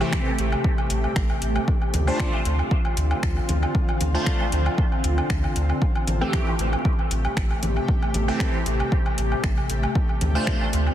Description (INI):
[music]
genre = dub techno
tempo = 116 BPM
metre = 4/4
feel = swing 53% on 16ths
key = A minor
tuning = A4 = 440 Hz
[part]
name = granular cloud pad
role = sustained chords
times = 0.0-10.9 s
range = C3 to G4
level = -28 LUFS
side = equal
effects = built-in reverb, sidechain pumping
[part]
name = resonant sweep polysynth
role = stabs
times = 0.0-10.6 s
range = E3 to C5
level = -30 LUFS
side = equal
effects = chorus, phaser, vintage 12-bit sampler grit, sidechain pumping, dub echo
[part]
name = pure sine sub bass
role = bass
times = 0.0-10.9 s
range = A1 to D2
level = -24 LUFS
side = equal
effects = sidechain pumping
[part]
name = woodblock and congas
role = percussion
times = 0.0-10.9 s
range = none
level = -32 LUFS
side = equal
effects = overdrive, sidechain pumping on perc, dub echo
[part]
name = deep house drum kit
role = drums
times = 0.1-10.8 s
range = finger snaps, hi-hat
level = -33 LUFS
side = left 1 dB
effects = overdrive, soft clipping on snare, dub echo
[part]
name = electronic kick drum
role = drums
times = 0.1-10.6 s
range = none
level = -24 LUFS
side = equal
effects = overdrive
[sound]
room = light reverb, digital ambience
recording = dense, heavily limited modern master, vinyl crackle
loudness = -20 LUFS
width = side -11 dB against mid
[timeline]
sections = 0.0-10.9 A section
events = none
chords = 0.0 Am7; 1.7 Dm7; 5.8 Am7; 10.0 Dm7